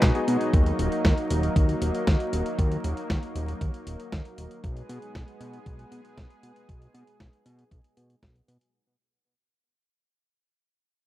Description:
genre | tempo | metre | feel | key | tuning
italo disco | 117 BPM | 4/4 | straight | unclear | A4 = 441 Hz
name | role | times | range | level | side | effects
lush unison pad | sustained chords | 0.0-8.7 s | F#3 to G#4 | -30 LUFS | equal | chorus
warm electric grand piano | stabs | 0.0-0.5 s | B3 to B4 | -32 LUFS | left 4 dB | tape echo
fat analog bass | bass | 0.0-8.6 s | Eb1 to B2 | -28 LUFS | equal | none
dusty soul sampler-style drum kit | drums | 0.0-8.7 s | handclaps, hi-hat, snare drum | -29 LUFS | equal | none
electronic kick drum | drums | 0.0-8.3 s | none | -24 LUFS | equal | none
room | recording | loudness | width
little or no reverb | dry, close 1970s-style studio recording, vinyl crackle | -23 LUFS | side -15 dB against mid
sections
0.0-8.7 A section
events
fade-out 0.0-8.7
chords
0.0 B6; 0.5 Ebm; 4.6 B6

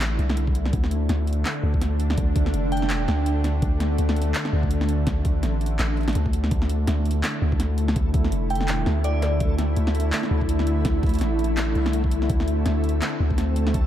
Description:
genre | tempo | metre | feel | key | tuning
half-time drum and bass | 166 BPM | 4/4 | swing 58% on 16ths, half-time | unclear | A4 = 441 Hz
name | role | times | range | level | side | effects
bowed-like drone | sustained chords | 0.0-13.9 s | D3 to E4 | -27 LUFS | equal | built-in reverb, sidechain pumping
long sustained 808-style bass | bass | 0.0-13.9 s | F1 to D2 | -23 LUFS | equal | none
drum and bass drum kit | drums | 0.0-13.8 s | handclaps, hi-hat, snare drum | -30 LUFS | equal | overdrive
electronic kick drum | drums | 0.5-13.8 s | none | -24 LUFS | equal | overdrive
glassy synth bell | melody | 2.7-2.9, 8.5-9.4 s | D5 to G5 | -33 LUFS | equal | chorus, phaser, diffuse ambient delay
backwards swelling texture | texture | 7.6-13.9 s | A3 to A4 | -34 LUFS | equal | built-in reverb
room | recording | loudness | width
light reverb, digital ambience | none | -20 LUFS | side -11 dB against mid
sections
0.0-13.9 A section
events
none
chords
0.0 Dsus2

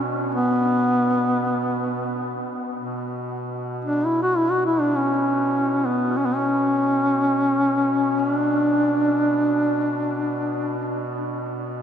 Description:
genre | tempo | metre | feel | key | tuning
caucasian folk, Caucasian lament | free time | none | none | B minor | A4 = 441 Hz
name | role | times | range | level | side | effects
clear duduk | drone | 0.0-11.8 s | B2 | -30 LUFS | right 1 dB | stereo widening
mellow duduk | melody | 0.3-10.9 s | B3 to F#4 | -20 LUFS | equal | diffuse ambient delay
room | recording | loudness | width
wet huge ambient reverb, RT60 8.7 s | dreamy mix soaked in reverb | -20 LUFS | side -8 dB against mid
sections
0.0-2.8 A section; 2.8-11.8 A section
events
none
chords
none

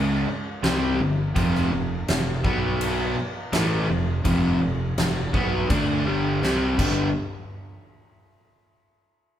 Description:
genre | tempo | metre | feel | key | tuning
blues rock power trio and southern rock | 83 BPM | 4/4 | straight | unclear | A4 = 438 Hz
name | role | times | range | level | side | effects
crunchy overdriven guitar | riff | 0.0-7.1 s | F2 to D4 | -23 LUFS | equal | none
fuzz fingered electric bass | bass | 0.0-7.1 s | F1 to D2 | -30 LUFS | equal | overdrive
big rock drum kit | drums | 0.6-7.0 s | crash cymbal, kick drum, snare drum | -26 LUFS | equal | none
room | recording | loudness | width
wet large studio reverb, RT60 1.4 s | band playing live in one room | -21 LUFS | side -10 dB against mid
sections
0.0-7.2 A section; 7.2-9.4 B section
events
drum fill 6.4-7.2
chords
0.3 G5; 1.4 F5; 2.4 B5; 3.2 F5; 6.8 G; 7.2 N.C.

